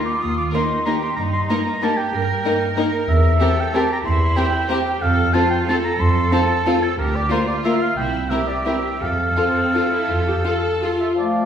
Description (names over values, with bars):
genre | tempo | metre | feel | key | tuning
classical, orchestral ballroom waltz | 156-202 BPM | 3/4 | rubato | F major from 3.1 s | A4 = 439 Hz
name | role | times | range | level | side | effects
warm oboe | second line | 0.0-11.5 s | A4 to Eb6 | -22 LUFS | right 1 dB | none
clear chamber cello section | bass | 0.0-11.0 s | Eb4 to Bb4 | -26 LUFS | right 2 dB | none
rich studio double bass section | bass | 0.2-10.4 s | C2 to G2 | -22 LUFS | right 1 dB | none
clear symphonic violin section | melody | 0.5-10.9 s | A4 to Bb4 | -29 LUFS | left 3 dB | none
rich chamber violin section | second line | 0.5-10.9 s | Eb4 to G4 | -26 LUFS | left 4 dB | none
clear studio viola section | accompaniment | 0.5-11.2 s | Bb3 to A4 | -25 LUFS | equal | none
clear clarinet | second line | 11.2-11.5 s | A3 | -23 LUFS | left 4 dB | none
silver concert flute | second line | 11.2-11.5 s | F5 | -24 LUFS | left 1 dB | none
warm bassoon | accompaniment | 11.2-11.5 s | F3 | -24 LUFS | right 2 dB | none
room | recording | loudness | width
wet recital hall reverb, RT60 1.3 s | heard from further back in the room | -17 LUFS | side -8 dB against mid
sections
0.0-11.2 A section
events
none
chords
0.0 Eb; 1.2 Eb/G; 3.1 C7/E; 5.0 F; 7.0 Bb/D; 8.0 C; 9.0 F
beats
| 0.22 0.53 0.86 | 1.17 1.49 1.82 | 2.13 2.44 2.77 | 3.07 3.39 3.73 | 4.04 4.36 4.69 | 5.01 5.33 5.68 | 6.00 6.32 6.66 | 6.98 7.31 7.65 | 7.98 8.31 8.66 | 9.01 9.37 9.74 | 10.09 10.45 10.82 | 11.16